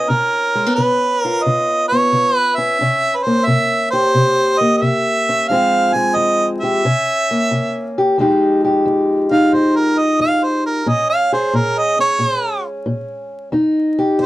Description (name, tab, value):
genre	acoustic country blues, solo or duo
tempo	89 BPM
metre	4/4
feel	swing 68% on 8ths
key	F minor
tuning	A4 = 440 Hz
part	mellow harmonica	melody	0.0-14.3 s	Bb4 to Ab5	-16 LUFS	right 2 dB	none
part	fingerpicked steel-string acoustic guitar	accompaniment	0.0-14.3 s	F2 to Ab4	-17 LUFS	left 1 dB	none
room	wet booth ambience, RT60 0.2 s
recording	vinyl crackle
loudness	-14 LUFS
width	side -16 dB against mid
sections	0.0-8.2 A section; 8.2-14.3 B section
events	harmonica solo 8.2-14.3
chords	0.0 Db7; 2.8 C7b9; 5.5 Fmadd9; 6.8 C7b9; 8.2 Fm9; 10.9 Bbm7; 13.5 Fsus2